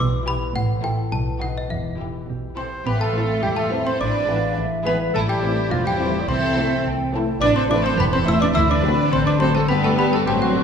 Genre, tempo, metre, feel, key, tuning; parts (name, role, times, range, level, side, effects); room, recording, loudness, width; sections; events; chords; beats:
cinematic, playful, whimsical film cue; 105 BPM; 2/4; straight; A minor; A4 = 442 Hz
trough xylophone with wooden mallets; melody; 0.0-10.6 s; D#5 to E6; -28 LUFS; left 2 dB
concert harp; arpeggios; 0.0-10.6 s; E2 to E5; -26 LUFS; left 5 dB
rich studio cello section; bass; 0.0-10.6 s; E2 to E4; -26 LUFS; right 4 dB
warm studio double bass section; bass; 0.0-10.6 s; E1 to D2; -26 LUFS; right 2 dB
rich studio violin section; melody; 0.3-10.6 s; D4 to C5; -31 LUFS; left 3 dB
rich studio violin section; second line; 0.3-10.6 s; B3 to A4; -31 LUFS; left 2 dB
warm studio viola section; accompaniment; 0.3-10.6 s; E3 to E4; -27 LUFS; right 1 dB
bright oboe; second line; 2.6-10.6 s; F4 to E5; -29 LUFS; right 2 dB
dark clarinet; second line; 2.6-10.6 s; F4 to E5; -26 LUFS; equal
small flute group; second line; 2.9-10.6 s; C5 to C6; -29 LUFS; right 2 dB
mellow French horn section; sustained chords; 3.1-10.6 s; A3 to G4; -30 LUFS; left 3 dB
wet scoring stage reverb, RT60 1.7 s; heard from further back in the room; -18 LUFS; side -7 dB against mid
0.0-2.9 A section; 2.9-10.6 B section
0.0 Em; 0.5 Am7; 1.1 B7; 1.7 Em; 2.9 Am; 4.0 E7/A; 5.1 Am; 6.3 Am/C; 7.4 Am; 8.6 D7; 9.7 G
| 0.54 1.12 | 1.70 2.28 | 2.86 3.43 | 4.00 4.57 | 5.14 5.71 | 6.28 6.85 | 7.42 7.99 | 8.55 9.12 | 9.69 10.26